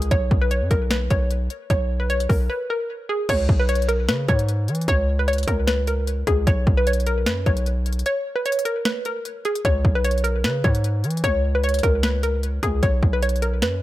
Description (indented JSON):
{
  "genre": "hip hop, trap",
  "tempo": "151 BPM",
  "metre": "4/4",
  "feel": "half-time",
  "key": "unclear",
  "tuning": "A4 = 440 Hz",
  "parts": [
    { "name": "hollow square pluck", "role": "melody", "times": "0.0-13.8 s", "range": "G#4 to C#5", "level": "-24 LUFS", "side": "equal", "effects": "chorus, ping-pong delay" },
    { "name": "hard-hitting 808-style bass", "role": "bass", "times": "0.0-13.8 s", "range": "B1 to E3", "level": "-22 LUFS", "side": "equal", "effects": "none" },
    { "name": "trap drum kit", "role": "drums", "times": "0.0-13.7 s", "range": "crash cymbal, hi-hat, kick drum, snare drum", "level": "-23 LUFS", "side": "equal", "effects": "none" }
  ],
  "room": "digital ambience",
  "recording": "none",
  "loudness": "-19 LUFS",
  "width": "side -15 dB against mid",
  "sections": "0.0-3.3 A section; 3.3-13.8 B section",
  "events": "break 2.5-3.3, 8.1-9.6",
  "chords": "0.1 Bsus2; 3.3 C#5; 6.5 Bsus2; 9.6 C#5; 12.8 Bsus2"
}